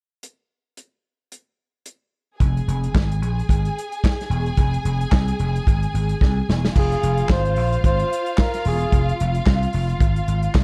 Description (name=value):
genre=disco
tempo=111 BPM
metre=4/4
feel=swing 56% on 16ths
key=F minor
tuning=A4 = 438 Hz
part: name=warm soul drum kit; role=drums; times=0.2-10.6 s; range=crash cymbal, handclaps, hi-hat, kick drum, snare drum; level=-21 LUFS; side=equal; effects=none
part: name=warm studio violin section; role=second line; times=2.4-10.6 s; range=F4 to Ab5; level=-31 LUFS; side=equal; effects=none
part: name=vintage slap bass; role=bass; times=2.4-10.6 s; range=E1 to C2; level=-23 LUFS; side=equal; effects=none
part: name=warm flugelhorn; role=melody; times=6.8-9.2 s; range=Ab4 to C5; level=-26 LUFS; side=equal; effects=slapback echo
room=small room ambience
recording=dark, warm production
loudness=-20 LUFS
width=mono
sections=0.2-2.4 A section; 2.4-6.7 B section; 6.7-10.6 C section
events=drum fill 6.2-6.7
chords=0.2 N.C.; 2.4 Fm